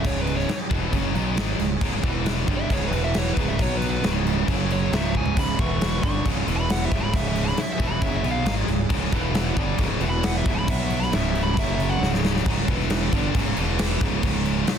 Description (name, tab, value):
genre	hard rock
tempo	135 BPM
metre	4/4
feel	straight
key	unclear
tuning	A4 = 440 Hz
part	biting lead guitar	melody	0.0-12.1 s	Cb5 to Db6	-31 LUFS	right 1 dB	overdrive, analog delay
part	overdriven tonewheel organ	sustained chords	0.0-12.4 s	E3 to Eb5	-36 LUFS	equal	none
part	distorted electric guitar	riff	0.0-14.7 s	Db2 to Cb4	-28 LUFS	right 13 dB	distortion
part	heavy high-gain guitar	riff	0.0-14.7 s	Db2 to Cb4	-29 LUFS	left 15 dB	distortion
part	fuzz fingered electric bass	bass	0.0-14.7 s	Db1 to Cb2	-26 LUFS	equal	overdrive
part	huge arena drum kit	drums	0.0-14.8 s	crash cymbal, kick drum, snare drum, splash cymbal, toms	-25 LUFS	left 1 dB	none
room	little or no reverb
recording	dense, heavily limited modern master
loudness	-20 LUFS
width	side -8 dB against mid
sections	0.0-12.5 A section; 12.5-14.8 B section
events	lead electric guitar solo 0.0-12.5; drum fill 5.1, 12.0-12.5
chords	0.0 Db5; 2.0 E5; 2.5 Db5; 2.9 E5; 3.4 Db5; 3.6 Cb5; 4.0 Db5; 4.5 Gb5; 4.9 Db5; 5.6 E5; 6.0 Db5; 6.5 E5; 6.9 Db5; 9.1 E5; 9.6 Db5; 10.0 E5; 10.5 Db5; 10.7 Cb5; 11.1 Db5; 11.6 Gb5; 12.0 Db5; 12.7 E5; 13.1 Db5; 13.6 E5; 14.0 Db5